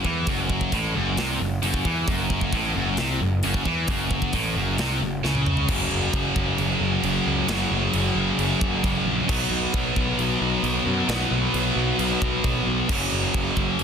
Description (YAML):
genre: heavy metal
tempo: 133 BPM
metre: 4/4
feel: straight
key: F# minor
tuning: A4 = 440 Hz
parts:
  - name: high-gain distorted guitar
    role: riff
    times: 0.0-13.8 s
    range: F#2 to B3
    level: -26 LUFS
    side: right 11 dB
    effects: distortion
  - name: scooped high-gain guitar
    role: riff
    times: 0.0-13.8 s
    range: F#2 to B3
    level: -26 LUFS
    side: left 13 dB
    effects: distortion
  - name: fuzz picked electric bass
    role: bass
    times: 0.0-13.8 s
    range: F#1 to F#2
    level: -27 LUFS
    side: equal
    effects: overdrive
  - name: tight metal drum kit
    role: drums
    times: 0.0-13.8 s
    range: china cymbal, crash cymbal, hi-hat, kick drum, snare drum, toms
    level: -28 LUFS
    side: equal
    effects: none
room: small room ambience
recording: dense, heavily limited modern master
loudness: -21 LUFS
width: side -7 dB against mid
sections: 0.0-5.7 A section; 5.7-13.8 B section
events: drum fill 5.2-5.7; half time 5.7-13.8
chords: 0.0 F#m; 5.7 F#5; 9.3 B5; 12.9 F#5